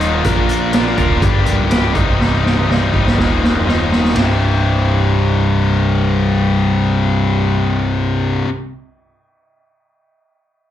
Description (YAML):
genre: quiet-loud alternative rock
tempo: 123 BPM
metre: 4/4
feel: straight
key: C minor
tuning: A4 = 440 Hz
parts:
  - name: twelve-string electric guitar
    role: arpeggios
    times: 0.0-8.5 s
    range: C2 to Bb4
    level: -24 LUFS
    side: right 6 dB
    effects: wide subtle chorus
  - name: heavy high-gain guitar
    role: riff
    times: 0.0-8.5 s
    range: C2 to Bb4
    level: -17 LUFS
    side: left 6 dB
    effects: distortion, slapback echo
  - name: fuzz picked electric bass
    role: bass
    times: 0.0-8.4 s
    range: C1 to Bb1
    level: -17 LUFS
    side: right 1 dB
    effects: overdrive
  - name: raw garage drum kit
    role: drums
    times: 0.0-4.3 s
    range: hi-hat, kick drum, ride cymbal, snare drum, toms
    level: -18 LUFS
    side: right 1 dB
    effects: none
room: little or no reverb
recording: live gig heard through the venue's PA, club reverb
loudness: -13 LUFS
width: side -11 dB against mid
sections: 0.0-4.2 A section; 4.2-8.1 B section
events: drum fill 2.2-4.2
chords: 0.2 Bb; 1.2 Gm; 2.0 Cm; 3.2 Ebsus2; 4.2 C